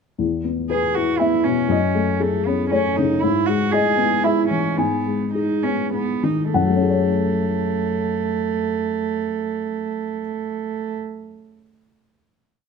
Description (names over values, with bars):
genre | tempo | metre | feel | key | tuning
neoclassical piano and strings | 98-119 BPM | 3/4 | rubato | F# dorian | A4 = 441 Hz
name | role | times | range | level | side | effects
dark upright piano | accompaniment | 0.2-11.7 s | E2 to G#5 | -20 LUFS | left 5 dB | none
warm cello | second line | 0.7-11.0 s | A3 to G#4 | -22 LUFS | right 8 dB | none
room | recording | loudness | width
moderate large studio reverb, RT60 1.1 s | dark, warm production | -18 LUFS | side -5 dB against mid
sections
0.2-6.5 theme; 6.5-10.2 final chord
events
slowing down 2.5-6.5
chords
0.2 E; 1.7 F#madd9; 3.2 E/G#; 4.8 G#m; 6.5 F#madd9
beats
| 0.19 0.70 1.20 | 1.71 2.21 2.72 | 3.22 3.73 4.25 | 4.79 5.35 5.93 | 6.54 7.15 7.75 | 8.36 8.97 9.58